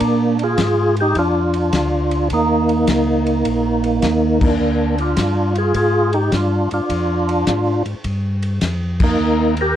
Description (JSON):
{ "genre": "soul jazz organ trio", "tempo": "105 BPM", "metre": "4/4", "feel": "swing 67% on 8ths", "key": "Bb mixolydian", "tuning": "A4 = 440 Hz", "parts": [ { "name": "percussive tonewheel organ", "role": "melody", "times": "0.0-9.8 s", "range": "Bb3 to Bb4", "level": "-16 LUFS", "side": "right 1 dB", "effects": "overdrive, chorus vibrato, slow rotary speaker" }, { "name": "mellow tonewheel organ", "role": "bass", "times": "0.0-9.7 s", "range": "Bb1 to Bb2", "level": "-21 LUFS", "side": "equal", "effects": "slow rotary speaker" }, { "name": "warm soul drum kit", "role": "drums", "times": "0.0-9.7 s", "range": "crash cymbal, hi-hat, kick drum, ride cymbal, snare drum", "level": "-24 LUFS", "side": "left 2 dB", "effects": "none" } ], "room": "light reverb", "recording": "worn, warbling old tape, cassette tape, warbly pitch drift", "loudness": "-15 LUFS", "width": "side -11 dB against mid", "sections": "0.0-9.8 A section", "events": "band accent 4.3, 8.9", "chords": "0.0 Bb7; 2.3 Eb5; 4.6 Bb7; 9.2 Eb" }